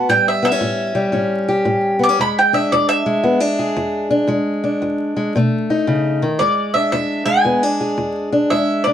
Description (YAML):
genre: acoustic country blues, solo or duo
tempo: 114 BPM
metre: 4/4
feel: swing 65% on 8ths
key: E mixolydian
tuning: A4 = 440 Hz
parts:
  - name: bowl-back mandolin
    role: melody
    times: 0.0-8.9 s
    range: D5 to D6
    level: -17 LUFS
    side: right 1 dB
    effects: none
  - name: fingerpicked steel-string acoustic guitar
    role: accompaniment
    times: 0.0-8.9 s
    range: E2 to G#4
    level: -17 LUFS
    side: left 1 dB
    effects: none
room: moderate small room reverb, RT60 0.5 s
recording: dark, warm production, vinyl crackle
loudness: -15 LUFS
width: side -10 dB against mid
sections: 0.0-6.4 A section; 6.4-8.9 B section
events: mandolin solo 0.0-6.4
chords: 0.1 A7; 2.2 E7; 5.3 B7; 6.4 E7